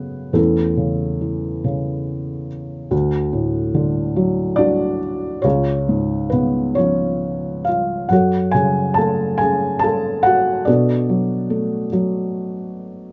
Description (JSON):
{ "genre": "classical, lyrical solo piano", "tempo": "46 BPM (dotted quarters)", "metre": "6/8", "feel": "uneven beats, rubato", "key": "F# minor", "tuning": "A4 = 441 Hz", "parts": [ { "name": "felt-muted upright piano", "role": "solo", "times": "0.0-13.1 s", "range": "C#2 to A5", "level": "-19 LUFS", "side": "equal", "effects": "none" } ], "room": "light reverb", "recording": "nothing above 7.5 kHz, faint mains hum", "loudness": "-19 LUFS", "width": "mono", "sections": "0.0-13.1 A section", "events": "none", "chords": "0.3 A/E; 2.9 D; 5.4 C#; 8.1 F#m; 10.7 Bm7" }